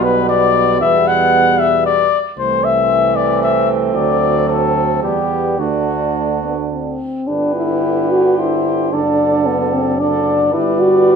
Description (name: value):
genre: classical, brass quintet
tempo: 105-116 BPM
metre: 3/4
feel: rubato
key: G major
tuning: A4 = 442 Hz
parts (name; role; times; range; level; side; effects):
- mellow trumpet; melody; 0.0-11.2 s; F#4 to F#5; -17 LUFS; left 6 dB; none
- mellow flugelhorn; second line; 0.0-11.2 s; B3 to B4; -22 LUFS; right 8 dB; none
- brilliant trombone; accompaniment; 0.0-11.2 s; B2 to G3; -22 LUFS; right 5 dB; none
- mellow French horn; accompaniment; 0.0-11.2 s; G3 to F#4; -18 LUFS; left 1 dB; none
- warm tuba; bass; 0.0-11.2 s; F#1 to E2; -22 LUFS; right 5 dB; none
room: wet stone room reverb, RT60 1.0 s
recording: minimal, uncompressed stereo recording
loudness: -13 LUFS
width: side -6 dB against mid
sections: 0.0-7.3 A section; 7.3-11.2 B section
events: none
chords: 0.0 G/B; 0.8 Em; 2.4 Am/C; 4.0 D7; 5.0 Em; 5.6 D; 7.3 G; 8.9 D/F#; 10.5 G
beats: 0.29 | 0.81 1.34 1.86 | 2.38 2.90 3.42 | 3.96 4.49 5.04 | 5.59 6.16 6.72 | 7.28 7.84 8.39 | 8.93 9.46 10.00 | 10.54 11.07